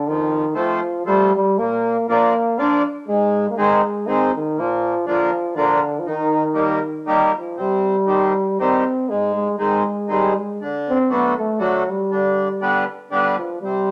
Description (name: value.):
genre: alpine folk.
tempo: 120 BPM.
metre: 3/4.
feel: rubato.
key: Eb major, C minor from 7.6 s.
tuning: A4 = 436 Hz.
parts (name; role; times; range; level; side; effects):
clear euphonium; melody; 0.0-13.9 s; D3 to D4; -22 LUFS; equal; none.
accordion; accompaniment; 0.1-13.9 s; F2 to D4; -22 LUFS; equal; none.
room: wet studio reverb, RT60 0.8 s.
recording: none.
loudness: -19 LUFS.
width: mono.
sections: 0.0-7.6 A section; 7.6-13.9 B section.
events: none.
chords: 0.1 F7; 1.6 Bb; 3.1 Ab; 4.6 Bb; 6.1 Eb; 7.6 Cm; 9.1 Ab; 10.6 D; 12.1 G/D.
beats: | 0.07 0.57 1.08 | 1.59 2.10 2.60 | 3.09 3.59 4.08 | 4.57 5.07 5.56 | 6.06 6.56 7.07 | 7.58 8.10 8.61 | 9.11 9.61 10.11 | 10.60 11.10 11.60 | 12.10 12.60 13.11 | 13.62.